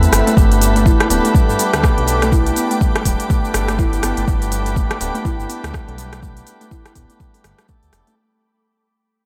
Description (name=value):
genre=afro house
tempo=123 BPM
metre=4/4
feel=swing 59% on 16ths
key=unclear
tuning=A4 = 440 Hz
part: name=ethereal airy pad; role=sustained chords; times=0.0-8.1 s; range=A4 to D6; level=-28 LUFS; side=equal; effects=ensemble chorus, built-in reverb, phaser, sidechain pumping
part: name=tonewheel organ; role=stabs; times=0.0-8.2 s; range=A3 to B4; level=-25 LUFS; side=equal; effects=overdrive, sidechain pumping, diffuse ambient delay
part: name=smooth synth bass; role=bass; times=0.0-8.0 s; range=D1 to D2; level=-22 LUFS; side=equal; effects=sidechain pumping
part: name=afro-pop drum kit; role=drums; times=0.0-8.2 s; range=hi-hat, rim click, shaker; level=-24 LUFS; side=equal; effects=none
part: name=kalimba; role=arpeggios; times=0.3-8.1 s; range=G3 to A4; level=-25 LUFS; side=equal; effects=sidechain pumping, diffuse ambient delay
part: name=electronic kick drum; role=drums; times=0.4-7.8 s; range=none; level=-18 LUFS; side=equal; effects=none
room=light reverb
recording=none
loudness=-16 LUFS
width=mono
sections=0.0-8.2 A section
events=drop 0.0-8.2; fade-out 0.4-8.2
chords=0.4 Gadd9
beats=| 0.37 0.86 1.35 1.84 | 2.32 2.81 3.30 3.79 | 4.28 4.76 5.25 5.74 | 6.23 6.71 7.20 7.69